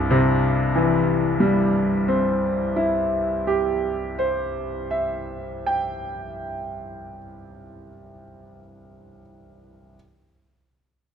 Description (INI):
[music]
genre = classical, romantic nocturne for solo piano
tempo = 26-29 BPM (dotted quarters)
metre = 12/8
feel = rubato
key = C major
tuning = A4 = 442 Hz
[part]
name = clear concert grand piano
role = solo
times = 0.0-10.0 s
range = C2 to G5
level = -21 LUFS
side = equal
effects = none
[sound]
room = moderate recital hall reverb, RT60 1.5 s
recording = close, detailed microphones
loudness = -20 LUFS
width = side -8 dB against mid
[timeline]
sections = 0.0-7.8 A section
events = none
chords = 0.0 C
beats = 1.19 3.40 5.54